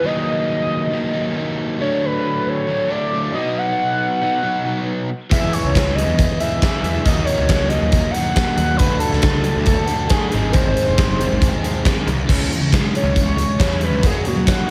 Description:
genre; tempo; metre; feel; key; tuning
indie rock; 137 BPM; 4/4; straight; C# dorian; A4 = 443 Hz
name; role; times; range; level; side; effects
overdriven synth lead; melody; 0.0-14.7 s; F#4 to F#5; -24 LUFS; equal; distortion, chorus, slapback echo
crunchy overdriven guitar; riff; 0.0-14.7 s; G#2 to E4; -28 LUFS; equal; lush chorus, slapback echo
overdriven electric guitar; riff; 0.0-14.7 s; D#3 to G#4; -27 LUFS; equal; none
fuzz picked electric bass; bass; 5.3-14.5 s; F#1 to F#3; -24 LUFS; equal; overdrive
big rock drum kit; drums; 5.3-14.6 s; crash cymbal, hi-hat, kick drum, snare drum; -20 LUFS; equal; none
room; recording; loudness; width
moderate lush hall reverb, RT60 1.6 s, small room ambience; big arena sound; -18 LUFS; mono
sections
0.0-12.3 A section; 12.3-14.7 B section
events
analog synth lead solo 12.3-14.7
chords
0.1 D#m; 1.8 D; 3.3 B; 5.3 E; 7.1 D#m; 8.8 D; 10.3 G#; 12.3 C#m; 14.0 F#add9

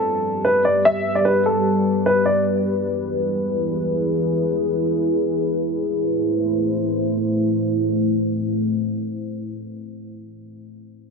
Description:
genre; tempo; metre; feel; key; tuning
hip hop; free time; none; none; A minor; A4 = 439 Hz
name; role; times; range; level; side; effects
dark baby grand piano; melody; 0.0-2.4 s; A4 to E5; -18 LUFS; equal; low-pass filter, tape echo
deep dark ambient pad; sustained chords; 0.0-9.7 s; A2 to D5; -20 LUFS; equal; chorus, built-in reverb, low-pass filter
room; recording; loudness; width
light reverb; heavily compressed radio sound; -18 LUFS; side -4 dB against mid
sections
0.0-5.7 A section; 5.7-8.9 B section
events
filter sweep 0.0-5.7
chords
0.0 G; 2.5 E; 5.7 Am

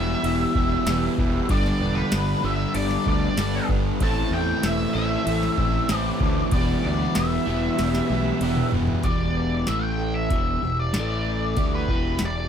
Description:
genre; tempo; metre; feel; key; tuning
classic rock; 95 BPM; 4/4; straight; E minor; A4 = 440 Hz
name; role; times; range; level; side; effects
octave-fuzz lead guitar; melody; 0.0-12.5 s; B4 to A5; -28 LUFS; left 1 dB; wah, distortion
picked plugged-in twelve-string acoustic guitar; accompaniment; 0.0-12.5 s; E2 to A4; -33 LUFS; right 8 dB; plate reverb
crunchy overdriven guitar; riff; 0.0-12.5 s; E2 to D4; -26 LUFS; left 2 dB; none
fuzz guitar; riff; 0.0-9.0 s; G2 to E4; -29 LUFS; equal; distortion
fuzz fingered electric bass; bass; 0.0-12.5 s; E1 to E2; -27 LUFS; equal; overdrive
booming analog drum machine; drums; 0.2-12.3 s; hi-hat, kick drum, ride cymbal, snare drum, toms; -26 LUFS; equal; none
room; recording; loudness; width
light reverb; none; -20 LUFS; side -8 dB against mid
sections
0.0-9.0 A section; 9.0-12.5 B section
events
drum fill 7.8-9.0; lead electric guitar solo 9.0-12.5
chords
0.0 Em; 1.5 Gadd9; 4.0 Am; 6.5 Em; 9.7 A5; 10.3 Em; 10.9 A5; 11.6 Em

